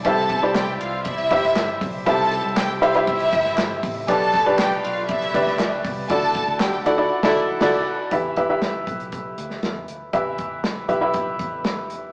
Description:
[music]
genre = piano-driven pop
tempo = 119 BPM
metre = 4/4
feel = straight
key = unclear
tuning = A4 = 440 Hz
[part]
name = bright upright piano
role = accompaniment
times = 0.0-12.1 s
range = B2 to E5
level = -24 LUFS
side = equal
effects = none
[part]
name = vintage muted fingered electric bass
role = bass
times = 0.0-12.1 s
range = G1 to E2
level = -38 LUFS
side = equal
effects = none
[part]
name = modern studio drum kit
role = drums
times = 0.0-12.0 s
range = crash cymbal, hi-hat, kick drum, ride cymbal, snare drum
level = -30 LUFS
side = equal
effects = none
[part]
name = warm studio violin section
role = second line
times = 0.1-7.8 s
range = E4 to A5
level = -25 LUFS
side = equal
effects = none
[part]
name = group handclap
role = percussion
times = 0.6-6.7 s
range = none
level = -35 LUFS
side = equal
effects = none
[sound]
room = wet stone room reverb, RT60 1.3 s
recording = rough rehearsal-room recording, warm saturation, small speaker sound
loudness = -21 LUFS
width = mono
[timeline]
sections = 0.0-8.1 A section; 8.1-12.1 B section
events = band accent 7.1-8.1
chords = 0.1 C; 4.1 G/B; 6.1 Dadd9; 8.1 Em

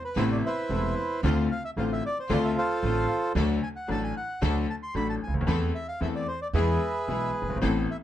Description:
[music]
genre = tango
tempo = 113 BPM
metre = 4/4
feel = rubato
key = unclear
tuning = A4 = 440 Hz
[part]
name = bandoneon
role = melody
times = 0.0-8.0 s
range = E4 to C6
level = -30 LUFS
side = right 1 dB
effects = none
[part]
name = bright concert grand piano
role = accompaniment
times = 0.2-7.8 s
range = E1 to A4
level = -29 LUFS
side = left 4 dB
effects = none
[part]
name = bright symphonic string section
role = stabs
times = 0.2-7.8 s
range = B3 to C5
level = -37 LUFS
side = equal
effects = none
[part]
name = upright bass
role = bass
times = 0.2-7.8 s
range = E1 to E2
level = -29 LUFS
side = right 2 dB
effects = none
[sound]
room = moderate club reverb, RT60 0.5 s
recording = dark, warm production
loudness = -25 LUFS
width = side -12 dB against mid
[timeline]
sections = 0.0-8.0 A section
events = none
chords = 0.0 Amadd9; 1.2 Dm7; 3.4 D; 5.5 Am/E; 6.5 E

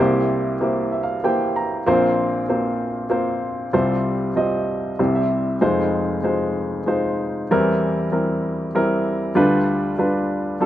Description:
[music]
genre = folk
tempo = 96 BPM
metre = 3/4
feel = straight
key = unclear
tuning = A4 = 440 Hz
[part]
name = warm baby grand piano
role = solo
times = 0.0-10.7 s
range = F1 to Bb5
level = -18 LUFS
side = equal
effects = slapback echo
[sound]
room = light reverb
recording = recorded outdoors, with no room sound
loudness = -18 LUFS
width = side -12 dB against mid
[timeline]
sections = 0.0-10.7 A section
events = none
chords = 0.0 C7; 1.9 Bbsus2; 3.7 Csus4; 5.0 C; 5.6 Fm7; 7.5 C7/E; 9.4 G7/D

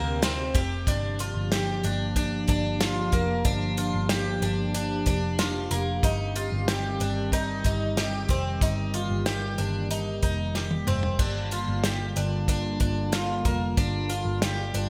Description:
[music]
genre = dream pop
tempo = 93 BPM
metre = 4/4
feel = straight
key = G minor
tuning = A4 = 444 Hz
[part]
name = warbly tape-like pad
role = sustained chords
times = 0.0-14.9 s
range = C3 to G4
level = -34 LUFS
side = equal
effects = chorus, built-in reverb
[part]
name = picked twelve-string acoustic guitar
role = arpeggios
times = 0.0-14.9 s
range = Bb3 to G4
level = -32 LUFS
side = equal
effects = lush chorus, delay
[part]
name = vintage muted picked electric bass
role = bass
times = 0.0-14.9 s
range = F1 to D2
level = -32 LUFS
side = equal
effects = none
[part]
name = loose indie drum kit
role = drums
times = 0.2-14.9 s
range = crash cymbal, hi-hat, kick drum, ride cymbal, snare drum, tambourine, toms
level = -30 LUFS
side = equal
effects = gated reverb
[sound]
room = moderate plate reverb, RT60 1.8 s, small room reverb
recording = bright 1980s-style digital production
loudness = -27 LUFS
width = mono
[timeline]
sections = 0.9-14.9 A section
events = drum fill 10.5-11.2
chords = 0.0 Eb6 (rootless); 0.9 Gm7; 6.0 Cm; 11.2 Gm7

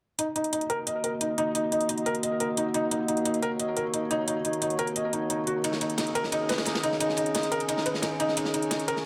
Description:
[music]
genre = dark technical drum and bass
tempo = 176 BPM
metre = 4/4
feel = straight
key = Eb minor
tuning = A4 = 440 Hz
[part]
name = metallic inharmonic drone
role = sustained chords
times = 0.7-9.1 s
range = Eb3 to Eb5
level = -33 LUFS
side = equal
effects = chorus, built-in reverb
[part]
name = felt-muted upright piano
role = arpeggios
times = 0.2-8.9 s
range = Eb4 to Eb5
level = -31 LUFS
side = equal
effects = low-pass filter, tape echo
[part]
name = electronic hi-hat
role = drums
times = 0.2-8.9 s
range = none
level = -34 LUFS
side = equal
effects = none
[part]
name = crunchy breakbeat drum kit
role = drums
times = 5.6-9.0 s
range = ride cymbal, snare drum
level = -35 LUFS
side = equal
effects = high-pass filter on cymbals, high-pass filter on snare, high-pass filter on room
[sound]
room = moderate plate reverb, RT60 1.9 s, small room ambience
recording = none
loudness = -28 LUFS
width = mono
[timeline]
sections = 0.2-9.1 A section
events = filter sweep on synth drone 0.2-9.1; filter sweep on felt piano 0.2-9.1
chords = 0.2 Ebm; 5.6 Dbsus2

